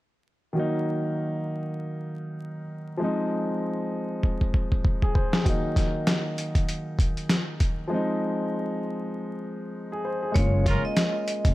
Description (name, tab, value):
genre	hip hop, boom-bap hip-hop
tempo	98 BPM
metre	4/4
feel	swing 58% on 16ths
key	Eb dorian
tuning	A4 = 441 Hz
part	dark baby grand piano	accompaniment	0.5-11.5 s	Eb3 to C5	-28 LUFS	equal	high-pass filter, low-pass filter
part	dusty soul sampler-style drum kit	drums	4.2-11.5 s	hi-hat, kick drum, snare drum	-23 LUFS	equal	overdrive
part	vibraphone with medium hard mallets	melody	10.3-11.5 s	Db5 to Eb5	-29 LUFS	right 1 dB	high-pass filter, low-pass filter, digital delay
part	upright bass	bass	10.4-11.5 s	F1 to Gb1	-24 LUFS	equal	none
part	clear horn section	stabs	10.7-10.8 s	Db4 to Bb4	-33 LUFS	right 2 dB	high-pass filter, low-pass filter, digital delay
room	little or no reverb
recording	vinyl crackle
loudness	-24 LUFS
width	side -17 dB against mid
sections	0.6-10.4 A section; 10.4-11.5 B section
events	drum fill 4.2-5.5; break 7.9-10.4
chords	0.6 Ebm; 3.0 Fm7; 5.5 Ebm; 7.9 Fm7; 10.4 Gbmaj9